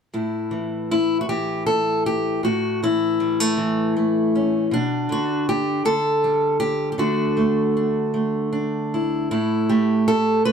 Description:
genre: folk, solo fingerstyle acoustic guitar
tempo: 78 BPM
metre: 3/4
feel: straight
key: unclear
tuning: A4 = 440 Hz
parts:
  - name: fingerpicked steel-string acoustic guitar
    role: solo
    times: 0.1-10.5 s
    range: A2 to B4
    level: -19 LUFS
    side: equal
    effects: none
room: moderate studio reverb, RT60 0.6 s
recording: dark, warm production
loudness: -19 LUFS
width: side -6 dB against mid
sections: 0.1-10.5 A section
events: none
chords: 0.1 A5; 4.7 G/B; 7.0 Dadd9; 9.3 A5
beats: | 0.13 0.90 1.67 | 2.44 3.20 3.96 | 4.71 5.47 6.22 | 6.99 7.75 8.53 | 9.31 10.08

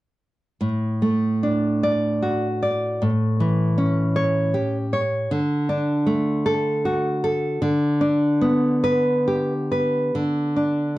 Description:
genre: romantic piece for solo classical guitar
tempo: 66-81 BPM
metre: 3/4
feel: rubato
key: D major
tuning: A4 = 440 Hz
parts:
  - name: nylon-string guitar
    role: solo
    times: 0.6-11.0 s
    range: A2 to D5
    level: -19 LUFS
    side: equal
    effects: slapback echo
room: light reverb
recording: dry, close 1970s-style studio recording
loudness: -19 LUFS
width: side -17 dB against mid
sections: 0.6-10.1 A section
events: none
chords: 0.6 D/A; 3.0 A7; 5.3 D; 7.6 G/D; 10.1 N.C.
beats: | 0.61 1.43 2.23 | 3.02 3.79 4.54 | 5.31 6.06 6.83 | 7.62 8.42 9.26 | 10.14 10.97

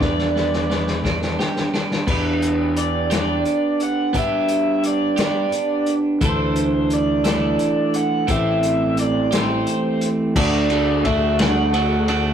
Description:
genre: indie rock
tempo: 58 BPM (dotted quarters)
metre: 6/8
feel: straight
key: unclear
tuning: A4 = 440 Hz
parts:
  - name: raw garage guitar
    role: melody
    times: 0.0-12.3 s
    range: B4 to F#5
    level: -23 LUFS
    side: right 1 dB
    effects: overdrive
  - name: twelve-string electric guitar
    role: riff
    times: 0.0-12.3 s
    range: E3 to A4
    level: -20 LUFS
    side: right 2 dB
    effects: none
  - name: fuzz fingered electric bass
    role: bass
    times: 0.0-12.3 s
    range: A1 to G2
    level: -26 LUFS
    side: left 2 dB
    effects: overdrive
  - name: vintage drum kit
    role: drums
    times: 0.0-12.2 s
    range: crash cymbal, hi-hat, kick drum, ride cymbal, snare drum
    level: -23 LUFS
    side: left 2 dB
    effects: none
  - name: analog string pad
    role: sustained chords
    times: 10.4-12.3 s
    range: D3 to F#4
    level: -30 LUFS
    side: left 2 dB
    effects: none
room: light reverb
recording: rough rehearsal-room recording, tube saturation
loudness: -17 LUFS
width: side -8 dB against mid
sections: 0.0-2.1 A section; 2.1-10.4 B section; 10.4-12.3 C section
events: drum fill 0.0-2.1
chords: 0.0 Em7; 6.2 Dsus2; 8.3 Am7; 10.4 D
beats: | 0.02 1.05 | 2.08 3.11 | 4.15 5.18 | 6.21 7.25 | 8.29 9.32 | 10.36 11.39

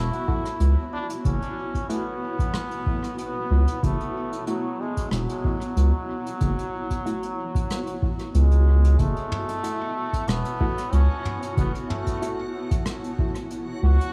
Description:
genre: ambient dub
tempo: 93 BPM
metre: 4/4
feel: swing 53% on 16ths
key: F# minor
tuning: A4 = 440 Hz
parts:
  - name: trombone with straight mute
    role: melody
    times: 0.0-14.1 s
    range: F#3 to F#4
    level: -34 LUFS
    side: equal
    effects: dub echo
  - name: granular cloud pad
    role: sustained chords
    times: 0.0-14.1 s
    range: B3 to A5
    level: -36 LUFS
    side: equal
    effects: built-in reverb
  - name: round analog bass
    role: bass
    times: 0.0-14.0 s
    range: E1 to C#2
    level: -21 LUFS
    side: equal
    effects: none
  - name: vintage brush drum kit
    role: drums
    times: 0.1-14.1 s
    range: hi-hat, rim click, toms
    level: -37 LUFS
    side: equal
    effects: dub echo
  - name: filtered dub chord stab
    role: stabs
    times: 0.3-12.4 s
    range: A3 to F#4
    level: -38 LUFS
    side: equal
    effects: none
  - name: electronic kick drum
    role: drums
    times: 0.3-13.3 s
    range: none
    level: -30 LUFS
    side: equal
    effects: none
  - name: backwards swelling texture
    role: texture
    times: 9.9-14.1 s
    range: F#4 to F#5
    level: -40 LUFS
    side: equal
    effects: built-in reverb
room: light reverb, studio ambience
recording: none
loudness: -25 LUFS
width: mono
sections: 0.0-9.0 A section; 9.0-14.1 B section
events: none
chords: 0.0 F#m7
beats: 0.60 | 1.25 1.90 2.54 3.19 | 3.83 4.47 5.12 5.77 | 6.41 7.06 7.70 8.35 | 8.99 9.64 10.28 10.93 | 11.57 12.22 12.86 13.51

